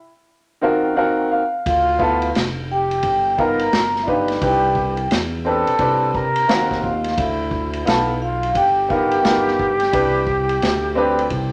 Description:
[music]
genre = hip hop, jazz-hop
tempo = 87 BPM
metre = 4/4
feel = swing 63% on 16ths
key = unclear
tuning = A4 = 440 Hz
[part]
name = clear upright piano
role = accompaniment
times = 0.6-11.2 s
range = Eb3 to Gb5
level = -22 LUFS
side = equal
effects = none
[part]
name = vibraphone with soft mallets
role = melody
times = 1.7-11.5 s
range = E5 to Bb5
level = -23 LUFS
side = equal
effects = none
[part]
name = mellow silver concert flute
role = second line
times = 1.7-11.5 s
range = E4 to Bb4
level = -26 LUFS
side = equal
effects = none
[part]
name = smooth synth bass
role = bass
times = 1.7-11.5 s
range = F1 to E2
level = -28 LUFS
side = equal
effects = none
[part]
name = vintage drum kit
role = drums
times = 1.7-11.5 s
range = hi-hat, kick drum, ride cymbal, snare drum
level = -28 LUFS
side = equal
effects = none
[sound]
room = moderate large studio reverb, RT60 1.1 s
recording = none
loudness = -19 LUFS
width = mono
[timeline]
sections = 0.0-11.5 A section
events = upright piano fill 0.6-1.7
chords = 0.3 Ebm69; 1.7 Dm69; 3.0 G7; 3.7 G7b13; 4.4 Cmaj9; 5.8 Am11/C; 6.5 Ebm69; 7.2 Dm69; 8.6 G7alt; 9.9 Cmaj9

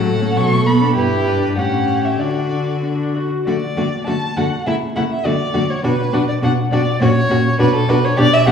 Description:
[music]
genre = quick classical-period movement for string quartet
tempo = 101 BPM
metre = 2/4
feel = rubato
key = D major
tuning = A4 = 439 Hz
[part]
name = rich violin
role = melody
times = 0.0-8.5 s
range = A4 to C#6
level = -20 LUFS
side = right 1 dB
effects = none
[part]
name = rich violin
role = second line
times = 0.0-8.5 s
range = E4 to A4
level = -22 LUFS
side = left 1 dB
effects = none
[part]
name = rich viola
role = accompaniment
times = 0.0-8.5 s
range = F#3 to F#4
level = -21 LUFS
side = left 1 dB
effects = none
[part]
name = warm cello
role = bass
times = 0.0-8.5 s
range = G2 to D3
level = -19 LUFS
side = equal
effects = none
[sound]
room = wet recital hall reverb, RT60 1.5 s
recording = heard from further back in the room, vinyl crackle, small room ambience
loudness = -15 LUFS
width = side -7 dB against mid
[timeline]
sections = 0.0-3.5 A section; 3.5-8.5 B section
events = none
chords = 0.4 Bm7; 1.0 Em/G; 1.6 A7; 2.2 D; 4.7 A; 5.3 D5; 5.8 Bm; 7.0 F#; 7.6 Bm

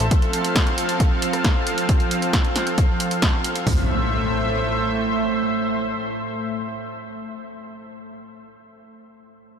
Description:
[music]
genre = uplifting trance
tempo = 135 BPM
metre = 4/4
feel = straight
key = A minor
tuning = A4 = 443 Hz
[part]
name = lush unison pad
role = sustained chords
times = 0.0-7.8 s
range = A2 to F5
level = -23 LUFS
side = right 1 dB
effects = chorus, sidechain pumping
[part]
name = punchy analog drum machine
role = drums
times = 0.0-3.6 s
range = hi-hat, rim click, snare drum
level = -26 LUFS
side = equal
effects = sidechain pumping on hats, sidechain pumping on cymbals
[part]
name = punchy analog drum machine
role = drums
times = 0.1-3.8 s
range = hi-hat, kick drum, toms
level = -19 LUFS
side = equal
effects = none
[part]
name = impact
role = sound effects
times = 3.7-7.8 s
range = none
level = -28 LUFS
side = equal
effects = none
[sound]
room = moderate huge ambient reverb, RT60 7.9 s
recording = dreamy mix soaked in reverb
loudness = -19 LUFS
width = side -7 dB against mid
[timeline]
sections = 0.0-3.7 A section; 3.7-7.2 B section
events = none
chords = 0.1 F; 3.7 Am

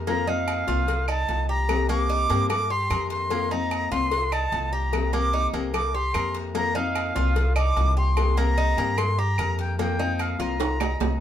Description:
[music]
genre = latin, Cuban son and guajira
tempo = 148 BPM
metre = 4/4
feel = straight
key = unclear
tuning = A4 = 444 Hz
[part]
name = nylon-string guitar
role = accompaniment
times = 0.0-11.2 s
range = C3 to G4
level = -31 LUFS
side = left 7 dB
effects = none
[part]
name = Cuban tres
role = arpeggios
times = 0.0-11.2 s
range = Bb3 to Bb4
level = -32 LUFS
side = right 4 dB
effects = none
[part]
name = upright bass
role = bass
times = 0.0-11.2 s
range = C2 to G2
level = -26 LUFS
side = equal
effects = none
[part]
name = bright reedy silver concert flute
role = melody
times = 0.1-11.2 s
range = F5 to D6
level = -27 LUFS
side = equal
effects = none
[part]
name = agogo bells and timbales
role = percussion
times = 0.1-11.2 s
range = none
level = -34 LUFS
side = right 6 dB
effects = none
[part]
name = cowbell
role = percussion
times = 0.1-11.2 s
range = none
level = -34 LUFS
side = left 8 dB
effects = none
[part]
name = claves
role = percussion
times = 0.5-11.0 s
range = none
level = -36 LUFS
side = right 2 dB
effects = none
[sound]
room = moderate studio reverb, RT60 0.5 s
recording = minimal, uncompressed stereo recording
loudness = -22 LUFS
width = side -10 dB against mid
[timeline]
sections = 0.0-11.2 A section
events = drum fill 10.6-11.2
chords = 0.0 Cm11

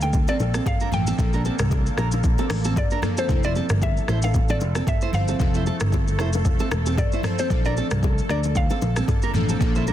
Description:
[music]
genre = afrobeats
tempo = 114 BPM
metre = 4/4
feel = swing 55% on 16ths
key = unclear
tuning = A4 = 440 Hz
[part]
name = mallet-like synth pluck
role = melody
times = 0.0-9.9 s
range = C5 to G5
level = -30 LUFS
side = left 2 dB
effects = chorus, ping-pong delay
[part]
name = glassy digital keys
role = accompaniment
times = 0.0-9.9 s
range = E3 to C5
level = -31 LUFS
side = left 1 dB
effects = chorus
[part]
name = granular cloud pad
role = sustained chords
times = 0.0-9.9 s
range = D3 to F5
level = -32 LUFS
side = equal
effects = built-in reverb
[part]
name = fingered electric bass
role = bass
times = 0.0-9.9 s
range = E1 to D2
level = -24 LUFS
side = equal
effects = none
[part]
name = afro-pop drum kit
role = drums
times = 0.0-9.9 s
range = hi-hat, kick drum, rim click, shaker, toms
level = -23 LUFS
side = equal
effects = vintage 12-bit sampler grit, soft clipping on snare
[part]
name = bongos and congas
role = percussion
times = 0.0-9.9 s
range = none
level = -33 LUFS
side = left 6 dB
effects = none
[part]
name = nylon-string guitar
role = riff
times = 0.3-9.9 s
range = C4 to C5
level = -30 LUFS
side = right 5 dB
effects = ping-pong delay
[sound]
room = digital ambience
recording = dense, heavily limited modern master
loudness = -20 LUFS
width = side -12 dB against mid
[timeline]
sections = 0.0-9.9 A section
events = none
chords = 0.0 Bbmaj7; 3.3 Fmaj7; 7.5 Bbmaj7

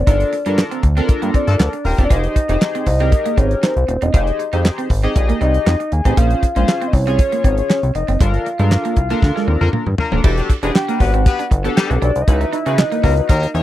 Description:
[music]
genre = early-eighties boogie funk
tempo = 118 BPM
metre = 4/4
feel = straight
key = unclear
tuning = A4 = 436 Hz
[part]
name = soft octave-layered synth lead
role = melody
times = 0.0-13.6 s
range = C5 to Ab5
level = -22 LUFS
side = left 2 dB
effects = chorus, phaser, tape echo
[part]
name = electric guitar at the edge of break-up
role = riff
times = 0.0-13.5 s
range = G3 to F4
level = -25 LUFS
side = right 7 dB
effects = wide subtle chorus
[part]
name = chorused synth bass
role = bass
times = 0.0-13.6 s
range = Eb1 to Db3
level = -17 LUFS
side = equal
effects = none
[part]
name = chorused polysynth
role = accompaniment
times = 0.1-13.6 s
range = Db4 to Eb5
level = -24 LUFS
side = left 3 dB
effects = none
[part]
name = damped 70s drum kit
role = drums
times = 0.1-13.6 s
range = crash cymbal, handclaps, hi-hat, kick drum, snare drum, toms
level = -15 LUFS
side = equal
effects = none
[part]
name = mellow horn section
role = second line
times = 1.5-2.0, 9.6-13.5 s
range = G3 to B4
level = -23 LUFS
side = left 4 dB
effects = none
[sound]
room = little or no reverb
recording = dry, close 1970s-style studio recording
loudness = -14 LUFS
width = side -14 dB against mid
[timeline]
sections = 0.0-10.2 A section; 10.2-13.6 B section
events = band accent 0.1-2.1, 8.2-10.2; drum fill 9.2-10.2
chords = 0.1 Gm9; 2.1 Fm9; 6.2 Bbm9; 8.2 Gm9; 10.2 Em11; 12.3 Dbm11

